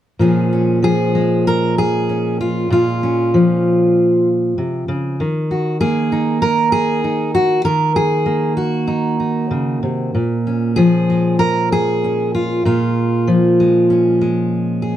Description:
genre	folk, solo fingerstyle acoustic guitar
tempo	97 BPM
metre	4/4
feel	straight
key	Bb minor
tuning	A4 = 439 Hz
part	fingerpicked steel-string acoustic guitar	solo	0.2-15.0 s	Bb2 to Bb4	-14 LUFS	equal	none
room	light reverb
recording	dark, warm production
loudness	-14 LUFS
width	side -11 dB against mid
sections	0.2-15.0 A section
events	none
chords	0.2 Bbm7; 5.2 Ebm; 10.1 Bbm7

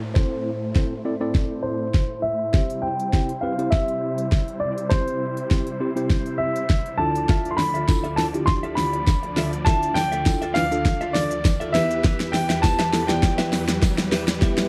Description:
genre	dance-pop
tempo	101 BPM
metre	4/4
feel	straight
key	unclear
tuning	A4 = 440 Hz
part	supersaw chords	sustained chords	0.0-14.7 s	D2 to D5	-33 LUFS	equal	sidechain pumping, low-pass filter
part	downlifter and riser	sound effects	0.0-2.5, 10.5-14.7 s	none	-39 LUFS	equal	none
part	warm concert grand piano	melody	0.1-14.7 s	C5 to C6	-28 LUFS	equal	low-pass filter, slapback echo
part	tine electric piano	accompaniment	0.2-14.7 s	B3 to D5	-30 LUFS	equal	none
part	pop drum kit	drums	0.2-14.7 s	hi-hat, kick drum, shaker, snare drum	-23 LUFS	equal	none
part	direct-recorded clean electric guitar	riff	7.3-14.7 s	F4 to E5	-33 LUFS	equal	lush chorus, low-pass filter
part	tambourine	percussion	7.9-14.0 s	none	-43 LUFS	equal	none
room	light reverb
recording	dry, close 1970s-style studio recording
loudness	-22 LUFS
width	mono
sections	0.0-14.7 A section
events	build-up 0.0-14.7; drum fill 0.0-14.7; filter sweep 0.0-14.7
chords	0.0 Am; 2.5 C; 7.0 Dmadd9; 11.7 Em

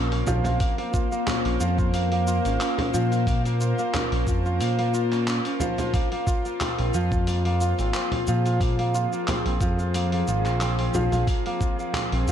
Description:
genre	organic downtempo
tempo	90 BPM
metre	4/4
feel	swing 54% on 16ths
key	Bb minor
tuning	A4 = 445 Hz
part	bowed-like drone	sustained chords	0.0-12.3 s	F3 to C5	-30 LUFS	left 3 dB	built-in reverb, sidechain pumping
part	kora	arpeggios	0.0-12.3 s	F3 to F4	-27 LUFS	right 1 dB	tape echo
part	smooth gliding synth bass	bass	0.0-12.3 s	Ab1 to Bb2	-24 LUFS	equal	none
part	bronze singing bowl	texture	0.0-12.3 s	none	barely audible	none	none
part	dusty soul sampler-style drum kit	drums	0.1-12.3 s	cabasa, handclaps, hi-hat	-33 LUFS	left 1 dB	none
part	frame drum	percussion	0.3-12.1 s	none	-31 LUFS	right 2 dB	none
part	electronic kick drum	drums	0.6-11.8 s	none	-25 LUFS	equal	none
room	light reverb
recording	dark, warm production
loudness	-22 LUFS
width	side -9 dB against mid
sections	0.0-12.3 A section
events	none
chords	0.0 Bbm

